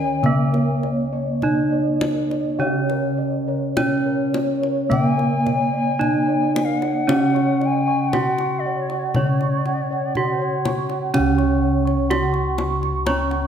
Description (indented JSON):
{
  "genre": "Javanese gamelan",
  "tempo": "51-62 BPM",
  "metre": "4/4",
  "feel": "straight",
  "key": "C# pelog barang",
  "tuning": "A4 = 440 Hz",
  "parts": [
    { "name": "gamelan-type bronze metallophone", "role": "melody", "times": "0.0-13.5 s", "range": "A#3+20c to C#5", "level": "-23 LUFS", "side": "right 2 dB", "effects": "none" },
    { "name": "bansuri", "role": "second line", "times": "0.0-10.8 s", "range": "C#5 to G#5-36c", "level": "-25 LUFS", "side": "left 5 dB", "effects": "none" },
    { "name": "gamelan-type bronze metallophone", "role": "accompaniment", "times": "0.0-13.5 s", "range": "C#3 to C#4", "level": "-27 LUFS", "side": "right 1 dB", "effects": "none" },
    { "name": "gamelan-type bossed gongs", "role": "arpeggios", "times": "0.0-13.5 s", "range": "A#4+20c to C#6", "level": "-30 LUFS", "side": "left 4 dB", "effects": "none" },
    { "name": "gamelan-type bronze metallophone", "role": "arpeggios", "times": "0.0-13.5 s", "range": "A#4+20c to C#6", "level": "-28 LUFS", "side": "right 4 dB", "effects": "none" },
    { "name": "gamelan-type bossed gongs", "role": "bass", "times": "0.0-13.5 s", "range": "C#2 to D4+50c", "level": "-25 LUFS", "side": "left 1 dB", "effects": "none" },
    { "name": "kendang", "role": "percussion", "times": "0.2-13.4 s", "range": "none", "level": "-28 LUFS", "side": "left 2 dB", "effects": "none" }
  ],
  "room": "moderate concert hall reverb, RT60 1.8 s",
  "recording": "none",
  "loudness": "-18 LUFS",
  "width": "side -8 dB against mid",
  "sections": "0.0-11.1 A section; 11.1-13.5 B section",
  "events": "none",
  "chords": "none"
}